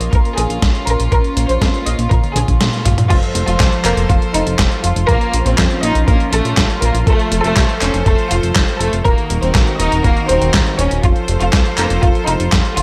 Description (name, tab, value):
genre	italo disco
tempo	121 BPM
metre	4/4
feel	straight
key	Bb minor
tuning	A4 = 441 Hz
part	clear studio violin section	melody	0.0-12.8 s	A3 to Eb5	-22 LUFS	equal	tape echo
part	warm studio string section	sustained chords	0.0-12.8 s	Eb3 to C5	-24 LUFS	equal	none
part	chorused synth bass	bass	0.0-12.8 s	Eb1 to Bb2	-20 LUFS	equal	none
part	dusty soul sampler-style drum kit	drums	0.0-12.8 s	crash cymbal, handclaps, hi-hat, snare drum, toms	-22 LUFS	equal	overdrive, gated reverb
part	electronic kick drum	drums	0.1-12.6 s	none	-17 LUFS	equal	overdrive
room	light reverb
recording	none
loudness	-15 LUFS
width	mono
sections	0.0-3.1 A section; 3.1-12.8 B section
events	drum fill 2.1-3.1; kick drops out 2.6-3.1; band accent 2.6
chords	0.0 Bbm; 3.1 F; 5.1 Bbm; 7.1 F; 9.1 Ebm; 11.0 F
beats	0.13 0.62 | 1.12 1.61 2.11 2.61 | 3.10 3.60 4.09 4.59 | 5.09 5.58 6.08 6.57 | 7.07 7.57 8.06 8.56 | 9.05 9.55 10.04 10.54 | 11.04 11.53 12.03 12.52